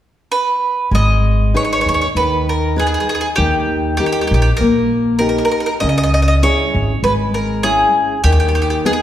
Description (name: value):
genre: italian folk, Italian serenade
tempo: 98 BPM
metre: 4/4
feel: rubato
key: G# harmonic minor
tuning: A4 = 440 Hz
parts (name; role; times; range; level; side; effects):
- bowl-back mandolin; melody; 0.3-9.0 s; G4 to D#5; -17 LUFS; equal; none
- nylon-string guitar; accompaniment; 0.9-9.0 s; C#3 to B4; -18 LUFS; left 2 dB; none
- upright bass; bass; 0.9-8.8 s; G#1 to D#2; -17 LUFS; equal; none
room: wet recital hall reverb, RT60 1.6 s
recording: heard from further back in the room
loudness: -13 LUFS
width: side -11 dB against mid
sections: 0.9-9.0 A section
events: none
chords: 0.0 N.C.; 0.9 G#m; 3.4 D#; 5.8 C#m; 8.2 G#m/D#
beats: 0.29 | 0.91 1.54 2.15 2.76 | 3.38 3.99 4.59 5.20 | 5.81 6.42 7.03 7.63 | 8.24 8.86